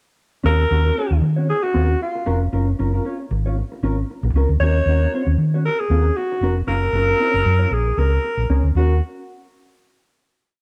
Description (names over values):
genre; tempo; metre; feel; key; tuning
disco; 116 BPM; 4/4; swing 56% on 16ths; Eb minor; A4 = 439 Hz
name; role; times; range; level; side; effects
mellow electric guitar; accompaniment; 0.4-8.9 s; Db4 to Db5; -28 LUFS; equal; analog chorus
hollow-body short-scale fingered electric bass; bass; 0.4-9.0 s; F1 to Eb3; -20 LUFS; equal; none
growling alto saxophone; melody; 0.5-9.0 s; F4 to Db5; -24 LUFS; equal; none
room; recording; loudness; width
light reverb; dark, warm production; -19 LUFS; mono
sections
0.4-8.8 verse; 8.8-10.6 final chord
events
none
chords
0.4 Ebm7; 2.5 Gbmaj7; 4.6 Ebm7; 6.7 Gbmaj7; 7.7 Bbm7; 8.8 Ebm7